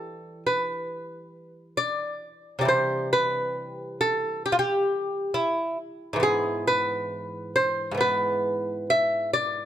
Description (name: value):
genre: classical, baroque-style dance for lute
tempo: 68 BPM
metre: 4/4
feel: rubato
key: C major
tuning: A4 = 443 Hz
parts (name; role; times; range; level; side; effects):
- lute; solo; 0.0-9.7 s; G#2 to E5; -24 LUFS; equal; none
room: light reverb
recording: close, detailed microphones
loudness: -23 LUFS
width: side -10 dB against mid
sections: 0.0-9.7 A section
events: none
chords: 0.0 Emadd11; 2.7 C; 6.2 E/G#